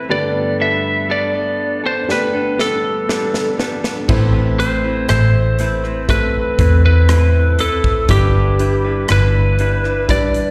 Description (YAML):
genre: pop ballad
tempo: 60 BPM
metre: 4/4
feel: straight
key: A minor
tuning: A4 = 439 Hz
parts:
  - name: lightly driven lead guitar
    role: melody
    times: 0.0-10.5 s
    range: G4 to E5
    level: -21 LUFS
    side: equal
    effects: slapback echo
  - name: warm upright piano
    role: accompaniment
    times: 0.0-10.5 s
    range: G1 to D5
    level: -26 LUFS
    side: equal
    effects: slapback echo
  - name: direct-recorded clean electric guitar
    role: arpeggios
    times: 0.0-10.5 s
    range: A2 to B4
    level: -26 LUFS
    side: equal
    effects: slapback echo, tape echo
  - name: modern studio drum kit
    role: drums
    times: 2.1-10.5 s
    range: crash cymbal, hi-hat, kick drum, rim click, snare drum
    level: -22 LUFS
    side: equal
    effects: none
  - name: vintage muted fingered electric bass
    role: bass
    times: 4.1-10.5 s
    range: G1 to E2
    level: -17 LUFS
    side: equal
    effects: none
room: small room ambience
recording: live gig heard through the venue's PA, recital hall reverb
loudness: -16 LUFS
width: mono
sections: 0.0-4.1 A section; 4.1-10.5 B section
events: drum fill 2.1-4.1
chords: 0.1 Gadd9; 4.1 Amadd9; 8.1 Em7/G